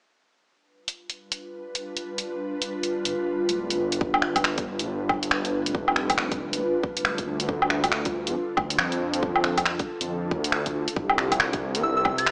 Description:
future garage; 138 BPM; 4/4; swing 62% on 16ths; A4 = 440 Hz
ethereal airy pad; sustained chords; 1.4-12.3 s; C3 to B4; -32 LUFS; equal; ensemble chorus, built-in reverb, vintage 12-bit sampler grit, sidechain pumping
garage drum kit; drums; 0.9-12.3 s; finger snaps, hi-hat, woodblock; -27 LUFS; equal; small room ambience
swelling detuned saw bass; bass; 3.1-12.3 s; D1 to F2; -32 LUFS; equal; tube saturation
electronic kick drum; drums; 4.0-12.2 s; -32 LUFS; equal; small room ambience
soft synth bell; melody; 11.8-12.3 s; E6 to A6; -27 LUFS; equal; chorus
wet recital hall reverb, RT60 1.5 s; small speaker sound; -26 LUFS; mono
0.5-4.0 A section; 4.0-12.3 B section
fade-in on ambient pad 0.5-4.0
0.5 G7; 7.5 Dm; 11.0 Cmaj7
| 0.53 0.97 1.40 1.84 | 2.27 2.71 3.14 3.58 | 4.01 4.44 4.88 5.31 | 5.75 6.18 6.62 7.05 | 7.49 7.92 8.36 8.79 | 9.23 9.66 10.10 10.53 | 10.97 11.40 11.84 12.27

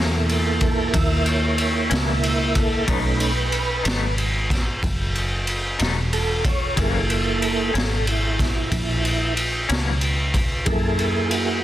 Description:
slow blues; 62 BPM (dotted quarters); 12/8; straight; F# mixolydian; A4 = 439 Hz
electric guitar through a small old amp; accompaniment; 0.0-9.9 s; F#2 to D#4; -29 LUFS; left 6 dB; tremolo
tonewheel organ; sustained chords; 0.0-11.6 s; A3 to E5; -24 LUFS; right 2 dB; chorus vibrato, slow rotary speaker
fingered electric bass; bass; 0.0-11.6 s; E1 to F#2; -24 LUFS; equal
raw garage drum kit; drums; 0.0-11.5 s; kick drum, ride cymbal, snare drum; -22 LUFS; equal
light reverb, small room ambience; dense, heavily limited modern master; -19 LUFS; side -13 dB against mid
0.0-11.6 A section
tonewheel organ solo 0.0-11.6
0.0 F#7; 2.9 B7; 6.8 F#7
0.94 1.92 | 2.89 3.86 4.83 5.81 | 6.78 7.75 8.73 9.70 | 10.67

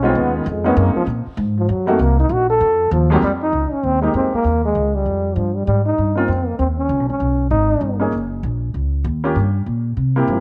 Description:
jazz, small-group swing and bop; 195 BPM; 4/4; swing 63% on 8ths; F minor from 3.2 s; A4 = 444 Hz
mellow trombone; melody; 0.0-8.0, 10.3-10.4 s; Eb3 to A4; -21 LUFS; equal
warm baby grand piano; accompaniment; 0.0-10.4 s; F2 to Ab4; -22 LUFS; equal
upright bass; bass; 0.0-10.4 s; Gb1 to C3; -22 LUFS; equal
moderate echo chamber reverb, RT60 1.4 s, studio reverb; -18 LUFS; mono
0.0-3.2 A section; 3.2-10.4 B section
trombone solo 0.0-3.2
0.0 Db9; 0.8 Gbadd9; 2.0 Ebm6; 2.6 F7; 3.2 Fm11; 4.4 Eb9; 5.7 Ab6; 6.9 Dbsus2; 8.1 Gb6; 9.4 Gm
0.15 0.46 | 0.76 1.07 1.38 1.68 | 1.99 2.29 2.60 2.90 | 3.21 3.52 3.83 4.13 | 4.44 4.75 5.05 5.36 | 5.67 5.97 6.28 6.59 | 6.90 7.20 7.51 7.82 | 8.13 8.43 8.74 9.05 | 9.36 9.66 9.97 10.28

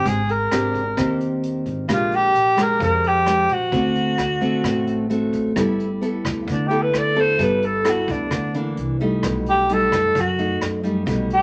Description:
bossa nova; 131 BPM; 4/4; straight; G major from 5.6 s; A4 = 437 Hz
breathy alto saxophone; melody; 0.0-11.4 s; D4 to D5; -22 LUFS; equal
nylon-string guitar; accompaniment; 0.0-11.4 s; F#2 to A4; -24 LUFS; equal
upright bass; bass; 0.0-11.4 s; G1 to F#2; -31 LUFS; equal
vintage brush drum kit; drums; 0.1-11.4 s; hi-hat, kick drum, rim click; -32 LUFS; equal
moderate studio reverb, RT60 0.7 s; -20 LUFS; mono
0.0-5.6 A section; 5.6-11.4 B section
alto saxophone solo 5.6-11.4
0.0 Abmaj9#11; 1.9 Bb6; 3.7 D7; 5.6 G69; 8.8 C9; 9.2 B7b13
| 0.05 0.51 0.97 1.43 | 1.89 2.35 2.81 3.27 | 3.72 4.18 4.64 5.10 | 5.56 6.02 6.48 6.94 | 7.40 7.86 8.31 8.77 | 9.23 9.69 10.15 10.61 | 11.07

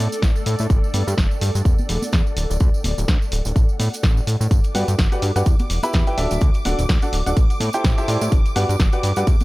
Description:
piano house; 126 BPM; 4/4; swing 57% on 16ths; G major; A4 = 440 Hz
fat analog bass; bass; 0.0-9.4 s; D1 to A2; -21 LUFS; equal; sidechain pumping
granular cloud pad; texture; 0.0-9.4 s; A4 to D5; -32 LUFS; equal; built-in reverb, sidechain pumping
punchy analog drum machine; drums; 0.1-9.4 s; cabasa, hi-hat, snare drum; -27 LUFS; equal
tambourine and congas; percussion; 0.1-9.4 s; -33 LUFS; right 1 dB
electronic kick drum; drums; 0.2-9.4 s; -17 LUFS; equal
string machine, violins; sustained chords; 4.5-9.4 s; D6; -32 LUFS; equal; ensemble chorus, vintage 12-bit sampler grit, sidechain pumping
clear upright piano; riff; 4.7-9.3 s; D4 to B5; -24 LUFS; equal; sidechain pumping, analog delay
little or no reverb; dry, gritty hardware recording; -17 LUFS; side -20 dB against mid
0.0-9.4 A section
0.0 A7sus4; 0.7 G5; 1.7 Em; 2.4 D; 3.6 A7sus4; 4.5 Gmaj7; 5.5 Em; 6.2 D; 7.4 Am7; 8.3 Gmaj7
0.23 | 0.70 1.18 1.65 2.13 | 2.61 3.08 3.56 4.03 | 4.51 4.99 5.46 5.94 | 6.42 6.89 7.37 7.84 | 8.32 8.80 9.27

